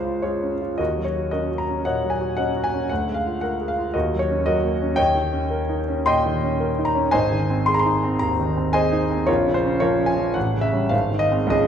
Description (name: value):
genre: classical, romantic character piece for solo piano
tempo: 98-118 BPM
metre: 4/4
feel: rubato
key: unclear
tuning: A4 = 439 Hz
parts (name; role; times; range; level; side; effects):
- warm concert grand piano; solo; 0.0-11.7 s; Ab1 to C6; -19 LUFS; equal; none
room: wet recital hall reverb, RT60 1.6 s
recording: minimal, uncompressed stereo recording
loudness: -19 LUFS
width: side -8 dB against mid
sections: 0.0-11.7 A section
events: none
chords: 0.0 Db; 0.8 Ebm7; 2.9 Bb7/D; 3.9 Ebm7; 5.0 Eb7; 7.1 Ab; 9.3 Bbm; 10.4 A7; 10.9 Ab